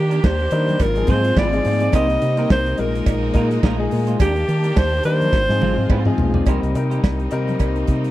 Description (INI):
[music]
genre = disco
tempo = 106 BPM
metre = 4/4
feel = swing 56% on 16ths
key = C minor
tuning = A4 = 440 Hz
[part]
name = breathy alto saxophone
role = melody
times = 0.0-6.1 s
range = G4 to Eb5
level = -21 LUFS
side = equal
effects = none
[part]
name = bright studio string section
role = sustained chords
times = 0.0-8.1 s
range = C3 to G4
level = -29 LUFS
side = right 1 dB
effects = none
[part]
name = fingered electric bass with an envelope filter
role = bass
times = 0.0-8.1 s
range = Ab1 to Eb3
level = -21 LUFS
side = equal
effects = none
[part]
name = semi-hollow electric guitar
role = accompaniment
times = 0.1-8.1 s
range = Ab3 to D5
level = -29 LUFS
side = right 5 dB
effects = lush chorus
[part]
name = warm soul drum kit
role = drums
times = 0.1-8.1 s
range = hi-hat, kick drum, snare drum, toms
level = -18 LUFS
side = equal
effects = none
[part]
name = congas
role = percussion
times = 0.2-8.0 s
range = none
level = -30 LUFS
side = left 6 dB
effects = none
[part]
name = cowbell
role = percussion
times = 0.2-7.7 s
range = none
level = -32 LUFS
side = right 15 dB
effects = none
[part]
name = dark grand piano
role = accompaniment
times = 0.5-8.1 s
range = F3 to Bb4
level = -24 LUFS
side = left 4 dB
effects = none
[sound]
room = studio reverb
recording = dry, close 1970s-style studio recording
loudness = -16 LUFS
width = side -15 dB against mid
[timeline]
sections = 0.0-6.5 A section; 6.5-8.1 B section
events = drum fill 5.3-6.5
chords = 0.0 Ebmaj7; 0.8 Ab6; 1.9 Cm7; 2.8 Bb7sus4; 4.2 Ebmaj7; 5.3 Ab6; 6.5 Cm7